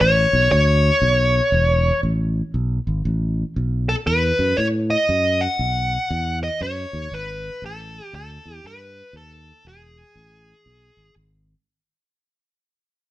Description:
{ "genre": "electric blues shuffle", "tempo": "118 BPM", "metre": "4/4", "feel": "swing 63% on 8ths", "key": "E major", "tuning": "A4 = 440 Hz", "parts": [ { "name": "dark smooth lead guitar", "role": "melody", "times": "0.0-11.1 s", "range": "G#4 to F#5", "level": "-20 LUFS", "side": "left 1 dB", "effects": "overdrive" }, { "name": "fingered electric bass", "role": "bass", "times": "0.0-11.5 s", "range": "E1 to A2", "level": "-21 LUFS", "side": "equal", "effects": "none" } ], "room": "moderate stone room reverb, RT60 0.9 s", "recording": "band playing live in one room", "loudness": "-17 LUFS", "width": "side -15 dB against mid", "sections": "0.0-11.7 A section", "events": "fade-out 0.0-11.7", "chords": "0.0 E5; 3.6 B7(no3); 7.6 Asus2; 9.6 E", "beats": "0.02 0.52 1.03 | 1.54 2.04 2.55 3.06 | 3.57 4.07 4.58 5.09 | 5.59 6.10 6.61 7.11 | 7.62 8.12 8.63 9.14 | 9.64 10.15 10.65 11.16" }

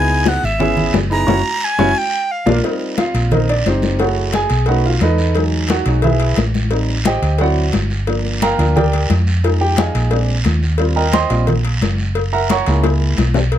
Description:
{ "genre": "Afro-Cuban jazz", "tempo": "176 BPM", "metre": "4/4", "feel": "straight", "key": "unclear", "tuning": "A4 = 442 Hz", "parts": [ { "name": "breathy bright tenor recorder", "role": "melody", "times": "0.0-2.6 s", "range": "E5 to A#5", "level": "-18 LUFS", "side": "equal", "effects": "none" }, { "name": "warm grand piano", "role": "accompaniment", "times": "0.0-13.2 s", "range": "F3 to Db6", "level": "-18 LUFS", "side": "right 2 dB", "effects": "none" }, { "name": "hollow-body short-scale fingered electric bass", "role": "bass", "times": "0.0-13.6 s", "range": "F#1 to F2", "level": "-17 LUFS", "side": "equal", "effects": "none" }, { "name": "congas", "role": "percussion", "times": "0.1-13.6 s", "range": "none", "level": "-21 LUFS", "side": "left 3 dB", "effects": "none" }, { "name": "bongos and cowbell", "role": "percussion", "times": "0.3-13.6 s", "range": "none", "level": "-23 LUFS", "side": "left 6 dB", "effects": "none" }, { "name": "guiro", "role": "percussion", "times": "0.3-13.5 s", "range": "none", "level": "-28 LUFS", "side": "right 3 dB", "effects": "none" } ], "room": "little or no reverb", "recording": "close, detailed microphones", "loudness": "-14 LUFS", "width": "side -11 dB against mid", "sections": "0.0-2.6 A section; 2.6-13.5 A section", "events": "recorder solo 0.0-2.6; band accent 1.3-2.6; grand piano solo 2.6-13.6; drum fill 12.8-13.5", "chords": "0.0 C#m7; 1.3 F#7; 2.0 A#; 2.6 Eb6; 4.0 Gbm7; 4.7 B7; 5.4 Emaj7; 6.7 Am7b5; 7.4 D7; 8.1 Gm7; 9.4 Fm7; 10.1 Bb7; 10.8 Eb6; 12.2 Gb7", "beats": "0.27 0.60 0.94 | 1.28 1.62 1.96 2.30 | 2.64 2.98 3.32 3.66 | 4.00 4.34 4.68 5.02 | 5.36 5.70 6.04 6.38 | 6.72 7.06 7.40 7.74 | 8.08 8.42 8.76 9.10 | 9.44 9.78 10.12 10.46 | 10.80 11.14 11.48 11.82 | 12.16 12.50 12.84 13.18 | 13.52" }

